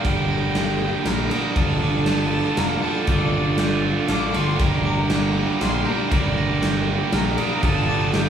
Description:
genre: post-rock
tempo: 119 BPM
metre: 3/4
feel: straight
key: G minor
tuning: A4 = 440 Hz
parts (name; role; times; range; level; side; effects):
- clear violin; melody; 0.0-8.3 s; D5 to D6; -29 LUFS; left 3 dB; none
- electric guitar through a small old amp; arpeggios; 0.0-8.3 s; G2 to A4; -31 LUFS; left 2 dB; none
- glockenspiel with hard plastic mallets; arpeggios; 0.0-8.3 s; D6 to Bb6; -34 LUFS; right 2 dB; analog delay
- tight distorted guitar; riff; 0.0-8.3 s; G3 to Bb4; -23 LUFS; right 4 dB; distortion
- fuzz fingered electric bass; bass; 0.0-8.3 s; F1 to Bb1; -24 LUFS; equal; overdrive
- big rock drum kit; drums; 0.0-8.3 s; kick drum, ride cymbal, snare drum; -24 LUFS; equal; none
room: moderate large studio reverb, RT60 1.1 s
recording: band playing live in one room, studio reverb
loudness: -18 LUFS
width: side -8 dB against mid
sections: 0.0-8.3 A section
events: none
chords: 0.0 Gm; 1.6 Dm; 4.6 Gm; 7.6 Dm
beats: | 0.05 0.55 1.06 | 1.56 2.07 2.57 | 3.08 3.58 4.09 | 4.60 5.10 5.61 | 6.12 6.62 7.13 | 7.63 8.14

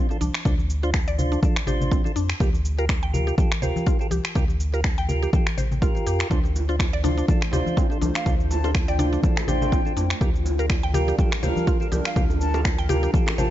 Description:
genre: afro house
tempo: 123 BPM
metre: 4/4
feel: swing 56% on 16ths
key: D minor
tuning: A4 = 440 Hz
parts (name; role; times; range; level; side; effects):
- mallet-like synth pluck; arpeggios; 0.0-13.5 s; C4 to G5; -31 LUFS; left 2 dB; chorus, sidechain pumping, ping-pong delay
- percussive tonewheel organ; stabs; 0.0-13.5 s; D4 to C5; -30 LUFS; right 2 dB; slow rotary speaker, sidechain pumping, ping-pong delay
- electronic cabasa and finger snaps; drums; 0.1-13.5 s; none; -31 LUFS; equal; overdrive, small room reverb
- congas; percussion; 0.1-13.5 s; none; -30 LUFS; left 2 dB; none
- warm sub bass; bass; 0.2-13.5 s; A1 to F2; -25 LUFS; equal; tube saturation, sidechain pumping
- electronic kick drum; drums; 0.5-13.2 s; none; -23 LUFS; equal; overdrive, small room reverb
- dark analog pad; sustained chords; 6.7-13.5 s; G3 to C5; -32 LUFS; equal; chorus, phaser, vintage 12-bit sampler grit, sidechain pumping
- bongos; percussion; 6.3-13.5 s; none; -34 LUFS; right 6 dB; none
- breathy mellow jazz flute; melody; 8.2-13.5 s; F5 to A5; -32 LUFS; left 2 dB; ping-pong delay
room: digital ambience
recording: nothing above 7.6 kHz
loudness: -20 LUFS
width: side -13 dB against mid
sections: 0.0-13.5 A section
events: none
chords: 0.0 Dm7; 2.4 Gm7; 6.3 Dm7; 10.2 Gm7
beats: | 0.45 0.94 1.43 1.92 | 2.40 2.89 3.38 3.87 | 4.36 4.84 5.33 5.82 | 6.31 6.79 7.28 7.77 | 8.26 8.75 9.23 9.72 | 10.21 10.70 11.19 11.67 | 12.16 12.65 13.14

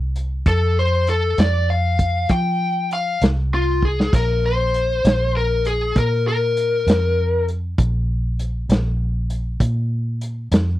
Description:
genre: slow blues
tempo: 66 BPM (dotted quarters)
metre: 12/8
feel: straight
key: unclear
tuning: A4 = 440 Hz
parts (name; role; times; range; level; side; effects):
- vintage muted fingered electric bass; bass; 0.0-10.8 s; Bb1 to F3; -20 LUFS; equal; none
- vintage drum kit; drums; 0.2-10.7 s; hi-hat, kick drum, snare drum, splash cymbal; -18 LUFS; equal; none
- lead guitar through a small cranked amp; melody; 0.5-7.5 s; F4 to G5; -20 LUFS; left 2 dB; overdrive
room: little or no reverb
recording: dry, close 1970s-style studio recording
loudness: -17 LUFS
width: side -15 dB against mid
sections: 0.0-10.8 A section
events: drum fill 3.8-4.1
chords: 0.0 F5; 4.1 Bb5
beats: | 0.45 1.37 2.29 3.21 | 4.12 5.04 5.95 6.87 | 7.78 8.69 9.60 10.51

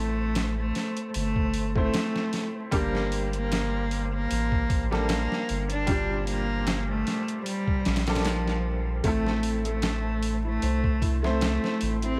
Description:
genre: trip hop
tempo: 76 BPM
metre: 4/4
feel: swing 55% on 16ths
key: A phrygian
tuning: A4 = 440 Hz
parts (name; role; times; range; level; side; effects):
- clear cello; melody; 0.0-12.2 s; F3 to D4; -32 LUFS; equal; vintage 12-bit sampler grit, dub echo
- bright upright piano; accompaniment; 0.0-12.2 s; Bb2 to C5; -35 LUFS; equal; tremolo, tape echo
- round analog bass; bass; 0.0-12.2 s; G1 to C2; -32 LUFS; equal; none
- wind-like tuned noise texture; texture; 0.0-12.2 s; C5; -46 LUFS; equal; none
- boom bap sampler-style drum kit; drums; 0.4-12.2 s; hi-hat, kick drum, snare drum; -32 LUFS; equal; small room ambience
- felt-muted upright piano; arpeggios; 9.0-12.2 s; A3 to E5; -38 LUFS; equal; digital delay
room: little or no reverb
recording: vinyl crackle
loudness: -27 LUFS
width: mono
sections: 0.0-12.2 A section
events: none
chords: 0.0 Am; 2.7 Gm; 9.0 Am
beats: 0.36 1.15 1.94 | 2.73 3.52 4.31 5.09 | 5.88 6.67 7.46 8.25 | 9.04 9.83 10.62 11.41

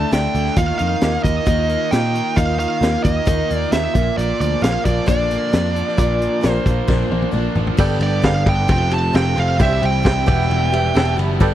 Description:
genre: folk rock and heartland rock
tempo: 133 BPM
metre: 4/4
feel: straight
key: unclear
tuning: A4 = 441 Hz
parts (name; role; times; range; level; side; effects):
- smooth overdriven lead guitar; melody; 0.0-11.2 s; D5 to A5; -22 LUFS; right 3 dB; none
- barky reed electric piano; accompaniment; 0.0-11.5 s; E4 to B5; -28 LUFS; right 7 dB; overdrive, fast tremolo
- picked steel-string acoustic guitar; accompaniment; 0.0-11.5 s; E2 to A4; -26 LUFS; left 8 dB; none
- crunchy overdriven guitar; riff; 0.0-11.5 s; E2 to G4; -24 LUFS; right 1 dB; none
- picked electric bass; bass; 0.0-11.5 s; E1 to Bb2; -20 LUFS; equal; none
- vintage drum kit; drums; 0.1-11.5 s; crash cymbal, hi-hat, kick drum, ride cymbal, snare drum, toms; -20 LUFS; equal; none
room: small room ambience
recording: dry, close 1970s-style studio recording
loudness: -15 LUFS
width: side -12 dB against mid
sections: 0.0-7.8 A section; 7.8-11.5 B section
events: drum fill 6.9-7.8; reed electric piano fill 10.5-11.4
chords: 0.0 Dsus2; 0.6 Ebsus2; 3.9 Bb; 7.8 Gadd9; 8.7 Fadd9; 9.6 C; 10.3 Em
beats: 0.12 | 0.57 1.02 1.47 1.92 | 2.37 2.82 3.27 3.72 | 4.17 4.62 5.07 5.53 | 5.98 6.43 6.88 7.34 | 7.79 8.24 8.70 9.15 | 9.60 10.05 10.51 10.96 | 11.41

